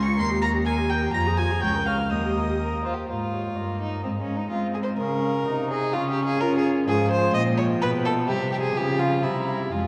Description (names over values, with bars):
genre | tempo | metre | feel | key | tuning
quick classical-period movement for string quartet | 127 BPM | 2/4 | straight | unclear | A4 = 440 Hz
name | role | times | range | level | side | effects
dark violin | melody | 0.0-9.9 s | C5 to Db7 | -35 LUFS | equal | none
rich violin | second line | 0.0-9.9 s | C4 to Db6 | -29 LUFS | equal | none
warm viola | accompaniment | 0.0-9.9 s | F3 to Db5 | -32 LUFS | equal | none
warm cello | bass | 0.0-9.9 s | Db2 to Db4 | -28 LUFS | equal | none
room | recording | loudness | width
wet church reverb, RT60 3.6 s | dark, warm production | -24 LUFS | mono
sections
0.0-3.1 A section; 3.1-9.9 B section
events
none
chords
0.2 Eb; 1.1 Fm; 1.6 Bbm/Db; 2.1 Eb; 3.1 N.C.; 3.6 Eb/G; 4.0 Ab; 5.0 Db; 5.5 Ab/C; 5.9 Db; 6.9 Fm/Ab; 7.3 Gm7/Bb; 7.8 G7/B; 8.3 C; 8.8 Db; 9.2 C7